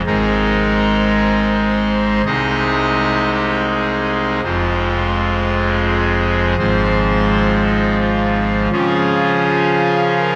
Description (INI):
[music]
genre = classical, chorale-style piece for pipe organ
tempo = 83 BPM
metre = 3/4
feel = rubato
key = Ab major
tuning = A4 = 441 Hz
[part]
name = pipe organ, trumpet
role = solo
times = 0.0-10.4 s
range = F1 to Eb5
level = -16 LUFS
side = equal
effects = none
[sound]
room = wet church reverb, RT60 3.3 s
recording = none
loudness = -16 LUFS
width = mono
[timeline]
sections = 0.1-10.4 A section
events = none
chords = 0.1 Ab; 2.3 Ab/C; 4.4 Fm; 6.6 Fm/Ab; 8.7 Db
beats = | 0.06 0.80 1.53 | 2.26 2.98 3.71 | 4.44 5.16 5.88 | 6.59 7.30 8.01 | 8.72 9.45 10.17